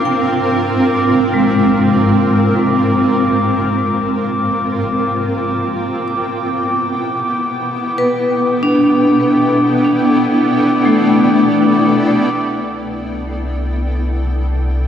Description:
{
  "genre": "ambient",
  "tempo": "free time",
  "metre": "none",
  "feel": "none",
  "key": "unclear",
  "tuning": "A4 = 438 Hz",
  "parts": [
    { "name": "granular cloud pad", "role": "sustained chords", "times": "0.0-14.9 s", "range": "Ab2 to G5", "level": "-16 LUFS", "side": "right 1 dB", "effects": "built-in reverb" },
    { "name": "glass harmonica", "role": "texture", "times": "0.0-12.4 s", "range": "D6", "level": "-21 LUFS", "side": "equal", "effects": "none" },
    { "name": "vibraphone with hard mallets", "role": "arpeggios", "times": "0.1-14.9 s", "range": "Ab3 to D6", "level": "-17 LUFS", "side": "left 1 dB", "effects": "tape echo" },
    { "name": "warm sub bass", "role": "bass", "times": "12.3-14.9 s", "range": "C2", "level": "-18 LUFS", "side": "equal", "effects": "none" }
  ],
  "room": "wet lush hall reverb, RT60 2.7 s",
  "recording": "none",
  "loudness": "-12 LUFS",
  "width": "side -9 dB against mid",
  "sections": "0.0-12.3 A section; 12.3-14.9 B section",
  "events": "none",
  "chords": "0.0 Abmaj7; 5.8 Em7; 12.3 Cmaj7"
}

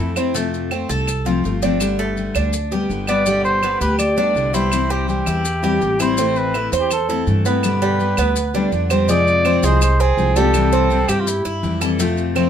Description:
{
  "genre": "latin, Cuban son and guajira",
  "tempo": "165 BPM",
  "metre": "4/4",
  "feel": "straight",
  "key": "C major",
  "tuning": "A4 = 440 Hz",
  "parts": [
    { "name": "warm trumpet", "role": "melody", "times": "0.0-0.1, 3.1-11.8 s", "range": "E4 to D5", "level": "-20 LUFS", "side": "left 1 dB", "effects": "none" },
    { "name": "picked steel-string acoustic guitar", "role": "accompaniment", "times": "0.0-12.5 s", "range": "B2 to G4", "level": "-21 LUFS", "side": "left 5 dB", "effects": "none" },
    { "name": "Cuban tres", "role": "arpeggios", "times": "0.0-12.5 s", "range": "G3 to C5", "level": "-22 LUFS", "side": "right 6 dB", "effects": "none" },
    { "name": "upright bass", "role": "bass", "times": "0.0-12.5 s", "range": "G1 to G2", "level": "-22 LUFS", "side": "equal", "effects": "none" },
    { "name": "claves", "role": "percussion", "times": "0.2-12.5 s", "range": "none", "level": "-28 LUFS", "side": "right 6 dB", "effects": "none" },
    { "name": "maracas", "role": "percussion", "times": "0.2-12.5 s", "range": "none", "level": "-30 LUFS", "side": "left 5 dB", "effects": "none" }
  ],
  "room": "light reverb",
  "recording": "minimal, uncompressed stereo recording",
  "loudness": "-16 LUFS",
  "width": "side -8 dB against mid",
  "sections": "0.0-9.1 A section; 9.1-12.5 B section",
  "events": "none",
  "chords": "0.3 F; 1.8 Gadd9; 3.3 G; 4.7 C; 6.2 Am; 7.6 G; 9.1 Fm; 10.5 C"
}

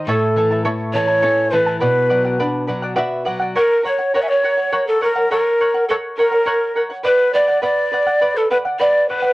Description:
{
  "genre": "andean folk, Andean ensemble",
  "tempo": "69 BPM (dotted quarters)",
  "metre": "6/8",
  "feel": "straight",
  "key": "unclear",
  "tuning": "A4 = 440 Hz",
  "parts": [
    { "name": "charango", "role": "accompaniment", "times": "0.0-9.3 s", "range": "E4 to A5", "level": "-22 LUFS", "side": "right 1 dB", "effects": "none" },
    { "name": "nylon-string guitar", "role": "accompaniment", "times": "0.0-3.6 s", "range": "A2 to E5", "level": "-22 LUFS", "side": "left 1 dB", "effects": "none" },
    { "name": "breathy mellow large pan pipes", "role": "melody", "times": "0.1-9.3 s", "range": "A4 to E5", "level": "-17 LUFS", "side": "right 1 dB", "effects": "none" },
    { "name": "breathy large quena", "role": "second line", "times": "0.1-9.3 s", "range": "A4 to G#5", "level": "-20 LUFS", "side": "left 1 dB", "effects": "none" }
  ],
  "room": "moderate studio ambience, RT60 0.5 s",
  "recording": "worn, warbling old tape, cassette tape, warbly pitch drift",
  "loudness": "-15 LUFS",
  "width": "side -20 dB against mid",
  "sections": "0.0-3.6 A section; 3.6-9.3 A section",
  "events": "nylon-string guitar fill 2.7-3.6",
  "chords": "0.1 A; 1.8 Bm; 3.6 F#; 7.1 Bm"
}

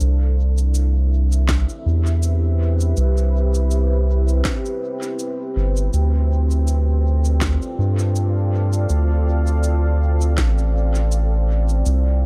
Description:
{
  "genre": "ambient dub",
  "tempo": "81 BPM",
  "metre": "4/4",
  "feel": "swing 55% on 16ths",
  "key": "D dorian",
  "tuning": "A4 = 440 Hz",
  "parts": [
    { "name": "deep dark ambient pad", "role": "sustained chords", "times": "0.0-12.3 s", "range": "C4 to F5", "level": "-29 LUFS", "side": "equal", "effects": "chorus, built-in reverb" },
    { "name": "soft dub sub bass", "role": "bass", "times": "0.0-12.3 s", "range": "G1 to G2", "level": "-19 LUFS", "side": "equal", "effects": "none" },
    { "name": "electronic shaker and snare drum", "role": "drums", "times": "0.0-12.0 s", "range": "none", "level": "-31 LUFS", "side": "equal", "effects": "dub echo" },
    { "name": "electronic kick drum", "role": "drums", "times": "1.5-10.5 s", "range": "none", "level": "-27 LUFS", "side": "equal", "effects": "none" }
  ],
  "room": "little or no reverb",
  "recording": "echo-heavy mix",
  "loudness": "-19 LUFS",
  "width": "mono",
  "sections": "0.0-12.3 A section",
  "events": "none",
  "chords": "0.0 Cmaj7; 5.9 Dm7"
}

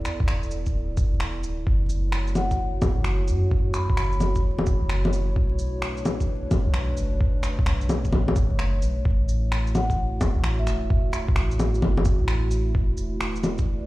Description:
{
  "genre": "future garage",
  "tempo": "130 BPM",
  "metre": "4/4",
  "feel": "swing 66% on 16ths",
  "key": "unclear",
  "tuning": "A4 = 441 Hz",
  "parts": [
    { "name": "dark analog pad", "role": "sustained chords", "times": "0.0-13.9 s", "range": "A3 to D5", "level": "-32 LUFS", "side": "right 1 dB", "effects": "chorus, sidechain pumping" },
    { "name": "soft 808-style bass", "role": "bass", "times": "0.0-13.9 s", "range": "D1 to F#2", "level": "-25 LUFS", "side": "equal", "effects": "sidechain pumping" },
    { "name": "electronic finger snaps, shaker and bongos", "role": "drums", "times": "0.1-13.6 s", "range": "none", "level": "-28 LUFS", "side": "left 1 dB", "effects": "none" },
    { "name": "electronic kick drum", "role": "drums", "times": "0.2-13.7 s", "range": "none", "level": "-23 LUFS", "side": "equal", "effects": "none" },
    { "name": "vibraphone with soft mallets", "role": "melody", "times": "2.4-4.4, 9.8-11.2 s", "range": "E5 to B5", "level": "-34 LUFS", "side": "left 1 dB", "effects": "ping-pong delay" }
  ],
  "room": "little or no reverb",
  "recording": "played on a big sound system in a bare room, large studio reverb, vinyl crackle",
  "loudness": "-21 LUFS",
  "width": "side -18 dB against mid",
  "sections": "0.0-9.1 A section; 9.1-13.9 A section",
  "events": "none",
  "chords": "0.0 E7sus4; 1.7 F#m7; 5.4 Bm9; 9.1 A6; 12.7 E7sus4"
}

